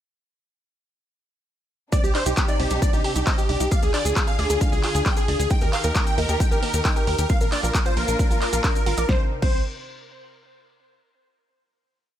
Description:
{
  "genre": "uplifting trance",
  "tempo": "134 BPM",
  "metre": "4/4",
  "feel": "straight",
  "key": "C minor",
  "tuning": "A4 = 439 Hz",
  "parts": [
    { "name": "supersaw chords", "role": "melody", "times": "1.9-9.6 s", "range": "G4 to G5", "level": "-27 LUFS", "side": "equal", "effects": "vintage 12-bit sampler grit, sidechain pumping, tape echo" },
    { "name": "plucky unison lead", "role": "second line", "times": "1.9-9.6 s", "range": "G4 to G5", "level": "-31 LUFS", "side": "left 1 dB", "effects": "wide subtle chorus, sidechain pumping, tape echo" },
    { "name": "warm symphonic string section", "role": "sustained chords", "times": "1.9-9.3 s", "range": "C3 to Bb4", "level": "-32 LUFS", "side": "left 2 dB", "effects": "sidechain pumping" },
    { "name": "analog pluck", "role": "arpeggios", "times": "1.9-9.6 s", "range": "Bb3 to D5", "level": "-32 LUFS", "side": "right 3 dB", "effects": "chorus, sidechain pumping, tape echo" },
    { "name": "electronic kick drum", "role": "drums", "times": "1.9-9.5 s", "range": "none", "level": "-22 LUFS", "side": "equal", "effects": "studio reverb" },
    { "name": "punchy analog drum machine", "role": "drums", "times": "1.9-9.5 s", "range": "crash cymbal, handclaps, hi-hat, snare drum", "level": "-28 LUFS", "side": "equal", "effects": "sidechain pumping on hats, studio reverb, sidechain pumping on cymbals" },
    { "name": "maracas", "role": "percussion", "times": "1.9-9.1 s", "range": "none", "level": "-33 LUFS", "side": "left 2 dB", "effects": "none" },
    { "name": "tight sequencer bass", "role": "bass", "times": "2.0-9.6 s", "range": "Ab1 to Eb2", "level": "-26 LUFS", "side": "equal", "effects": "sidechain pumping" }
  ],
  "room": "little or no reverb",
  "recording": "none",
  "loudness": "-19 LUFS",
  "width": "side -11 dB against mid",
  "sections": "1.9-9.1 drop; 9.1-10.9 final chord",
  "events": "drop 1.9-9.1",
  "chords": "1.9 Cmadd9; 3.7 Ddim; 5.5 Eb; 7.3 Bb; 9.1 N.C.",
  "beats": "| 1.92 2.37 2.82 3.27 | 3.71 4.16 4.61 5.06 | 5.51 5.95 6.40 6.85 | 7.30 7.75 8.19 8.64 | 9.09 9.54"
}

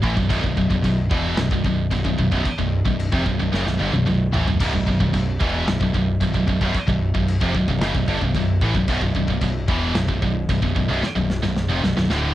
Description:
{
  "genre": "heavy metal",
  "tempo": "112 BPM",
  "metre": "4/4",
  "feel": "straight",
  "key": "B minor",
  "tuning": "A4 = 440 Hz",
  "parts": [
    { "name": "heavy high-gain guitar", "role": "riff", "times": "0.0-12.3 s", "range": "B1 to E3", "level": "-26 LUFS", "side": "left 4 dB", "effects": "distortion" },
    { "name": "heavy high-gain guitar", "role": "riff", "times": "0.0-12.3 s", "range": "B1 to E3", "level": "-27 LUFS", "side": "right 7 dB", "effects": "distortion" },
    { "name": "high-gain distorted guitar", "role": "riff", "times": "0.0-12.3 s", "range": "B1 to E3", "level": "-24 LUFS", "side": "equal", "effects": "distortion" },
    { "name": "growling picked electric bass", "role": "bass", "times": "0.0-12.3 s", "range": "B0 to A1", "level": "-24 LUFS", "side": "equal", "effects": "overdrive" },
    { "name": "modern studio drum kit", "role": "drums", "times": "0.0-12.2 s", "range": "china cymbal, crash cymbal, kick drum, snare drum, toms", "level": "-25 LUFS", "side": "equal", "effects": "cassette tape" }
  ],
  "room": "small room ambience",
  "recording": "home recording on cassette",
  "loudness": "-18 LUFS",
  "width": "side -14 dB against mid",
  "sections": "0.0-12.3 A section",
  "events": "drum fill 3.5-4.6, 11.0-12.3",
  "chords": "0.0 B5",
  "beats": "| 0.30 0.84 1.38 1.92 | 2.46 2.99 3.53 4.07 | 4.60 5.14 5.67 6.21 | 6.75 7.28 7.82 8.35 | 8.88 9.42 9.96 10.49 | 11.03 11.57 12.10"
}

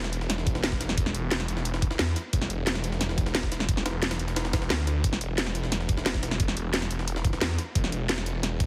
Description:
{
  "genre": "dark technical drum and bass",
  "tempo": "177 BPM",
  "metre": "4/4",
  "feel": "straight",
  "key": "unclear",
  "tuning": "A4 = 445 Hz",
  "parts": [
    { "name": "snarling distorted saw bass", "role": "bass", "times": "0.0-8.7 s", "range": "E1 to E2", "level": "-32 LUFS", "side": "equal", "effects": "distortion, overdrive, sidechain pumping" },
    { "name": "drum and bass drum kit", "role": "drums", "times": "0.0-8.7 s", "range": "hi-hat, snare drum", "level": "-32 LUFS", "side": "equal", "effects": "none" },
    { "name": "jungle sampler-style drum kit", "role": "drums", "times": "0.0-8.7 s", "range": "hi-hat, snare drum", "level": "-38 LUFS", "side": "equal", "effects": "high-pass filter on hats, high-pass filter on snare, high-pass filter on room" },
    { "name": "electronic kick drum", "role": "drums", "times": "0.5-8.7 s", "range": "none", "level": "-30 LUFS", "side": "equal", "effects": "none" }
  ],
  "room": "light reverb",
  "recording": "heavily compressed radio sound, multiband compression",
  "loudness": "-28 LUFS",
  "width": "mono",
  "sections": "0.0-8.7 A section",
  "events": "none",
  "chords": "none",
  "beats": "0.30 0.64 | 0.97 1.31 1.65 1.99 | 2.33 2.67 3.01 3.35 | 3.69 4.03 4.36 4.70 | 5.04 5.38 5.72 6.06 | 6.40 6.74 7.08 7.42 | 7.75 8.09 8.43"
}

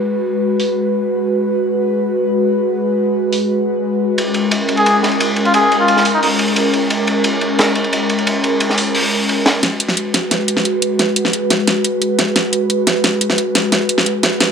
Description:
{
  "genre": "liquid drum and bass",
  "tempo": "176 BPM",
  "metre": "4/4",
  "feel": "straight",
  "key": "G# minor",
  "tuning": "A4 = 440 Hz",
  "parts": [
    { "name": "airy breathy pad", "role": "sustained chords", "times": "0.0-14.5 s", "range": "G#3 to B4", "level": "-16 LUFS", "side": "equal", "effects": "chorus" },
    { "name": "pop drum kit", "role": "drums", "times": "0.6-0.7, 3.3-3.4, 6.1, 8.8-14.5 s", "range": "hi-hat, snare drum", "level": "-16 LUFS", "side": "equal", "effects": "high-pass filter on hats, low-pass filter on hats, high-pass filter on snare, low-pass filter on snare" },
    { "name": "crunchy breakbeat drum kit", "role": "drums", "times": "4.2-9.5 s", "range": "hi-hat, ride cymbal, snare drum", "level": "-17 LUFS", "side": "equal", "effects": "high-pass filter on cymbals, high-pass filter on hats, high-pass filter on snare, high-pass filter on room" },
    { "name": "trumpet with cup mute", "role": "melody", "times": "4.8-6.3 s", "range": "D#4 to G#4", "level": "-15 LUFS", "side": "left 1 dB", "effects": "ping-pong delay" }
  ],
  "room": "moderate plate reverb, RT60 0.9 s, studio reverb",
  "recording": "none",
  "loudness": "-13 LUFS",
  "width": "side -6 dB against mid",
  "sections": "0.0-9.6 A section; 9.6-14.5 B section",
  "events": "filter sweep on analog synth pad 0.0-9.6, 9.6-14.5; build-up 9.6-14.5; drum fill 9.6-14.5",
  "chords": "0.0 G#m7; 4.2 A#m7; 9.6 G#m7",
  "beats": "| 0.09 0.43 0.77 1.11 | 1.45 1.79 2.13 2.47 | 2.81 3.15 3.49 3.83 | 4.18 4.52 4.86 5.20 | 5.54 5.88 6.22 6.56 | 6.90 7.24 7.58 7.93 | 8.27 8.61 8.95 9.29 | 9.63 9.97 10.31 10.65 | 10.99 11.34 11.68 12.02 | 12.36 12.70 13.04 13.38 | 13.72 14.06 14.40"
}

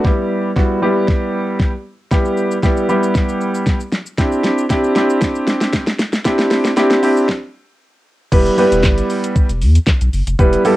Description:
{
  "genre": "dance-pop",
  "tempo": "116 BPM",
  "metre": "4/4",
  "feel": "straight",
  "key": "E minor",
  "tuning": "A4 = 441 Hz",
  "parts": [
    { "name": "warm baby grand piano", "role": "accompaniment", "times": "0.0-10.8 s", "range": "G3 to B4", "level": "-15 LUFS", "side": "equal", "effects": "sidechain pumping, cassette tape" },
    { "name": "smooth R&B drum kit", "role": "drums", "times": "0.0-10.8 s", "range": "crash cymbal, handclaps, hi-hat, kick drum, shaker, snare drum", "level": "-16 LUFS", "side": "equal", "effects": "cassette tape" },
    { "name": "saturated sub bass", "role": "bass", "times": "8.3-10.6 s", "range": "E1 to E2", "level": "-15 LUFS", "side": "equal", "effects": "sidechain pumping" }
  ],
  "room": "moderate small room reverb, RT60 0.5 s",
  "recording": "home recording on cassette, high-pass filter",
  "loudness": "-13 LUFS",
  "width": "side -16 dB against mid",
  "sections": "0.0-8.3 A section; 8.3-10.8 B section",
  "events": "build-up 0.0-8.3; drum fill 0.0-7.3; filter sweep 0.0-8.3; stop 7.3-8.3; drop 8.3-10.8",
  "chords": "0.0 Em; 4.2 Cadd9; 8.3 Em",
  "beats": "| 0.05 0.56 1.08 1.60 | 2.12 2.63 3.15 3.67 | 4.18 4.70 5.22 5.74 | 6.25 6.77 7.29 7.80 | 8.32 8.84 9.36 9.87 | 10.39"
}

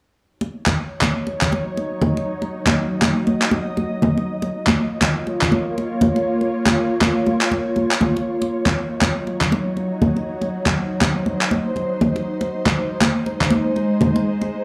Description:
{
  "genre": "afro house",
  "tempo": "120 BPM",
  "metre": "4/4",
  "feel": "swing 60% on 16ths",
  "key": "Eb dorian",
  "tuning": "A4 = 439 Hz",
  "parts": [
    { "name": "ethereal airy pad", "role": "sustained chords", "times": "0.8-14.6 s", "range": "Gb3 to Eb5", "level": "-25 LUFS", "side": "equal", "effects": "ensemble chorus, built-in reverb" },
    { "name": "congas", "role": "percussion", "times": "0.4-14.5 s", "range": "none", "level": "-22 LUFS", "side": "equal", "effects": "none" },
    { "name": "electronic handclaps", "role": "drums", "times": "0.7-13.5 s", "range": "none", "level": "-24 LUFS", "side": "equal", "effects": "studio reverb" }
  ],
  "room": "light reverb, small room ambience",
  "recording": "dry, gritty hardware recording, transformer saturation, small room reverb",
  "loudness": "-20 LUFS",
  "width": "mono",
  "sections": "0.3-14.6 A section",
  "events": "none",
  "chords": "0.3 Ebm7; 4.3 Bbm; 8.3 Ebm7; 12.3 Ab",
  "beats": "| 0.27 0.77 1.27 1.77 | 2.27 2.77 3.27 3.77 | 4.27 4.77 5.27 5.77 | 6.27 6.77 7.27 7.77 | 8.27 8.77 9.27 9.77 | 10.27 10.77 11.27 11.77 | 12.27 12.77 13.27 13.77 | 14.27"
}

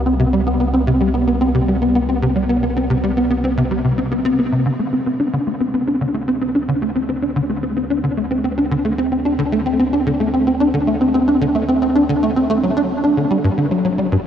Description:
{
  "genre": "ambient, sequencer-driven space music",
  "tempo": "111 BPM",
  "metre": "4/4",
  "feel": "straight",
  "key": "unclear",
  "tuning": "A4 = 440 Hz",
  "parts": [
    { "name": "warm sub bass", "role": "bass", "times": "0.0-14.3 s", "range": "G1 to D2", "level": "-26 LUFS", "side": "equal", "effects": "none" },
    { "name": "tight sequencer bass", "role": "riff", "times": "0.1-14.2 s", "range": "G2 to D4", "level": "-15 LUFS", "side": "equal", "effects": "ensemble chorus, analog delay" }
  ],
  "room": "wet huge ambient reverb, RT60 7.3 s",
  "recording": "worn, warbling old tape, cassette tape, warbly pitch drift",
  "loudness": "-15 LUFS",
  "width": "side -9 dB against mid",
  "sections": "0.0-4.7 A section; 4.7-14.3 B section",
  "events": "filter sweep on analog synth bass 0.0-4.7; fade-in on sub bass 4.7-14.3",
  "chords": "0.0 C5; 4.7 N.C.; 13.3 G5",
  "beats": "| 0.33 0.87 1.41 1.96 | 2.50 3.04 3.58 4.12 | 4.66 5.20 5.74 6.28 | 6.82 7.36 7.90 8.44 | 8.98 9.52 10.06 10.60 | 11.14 11.68 12.22 12.77 | 13.31 13.85"
}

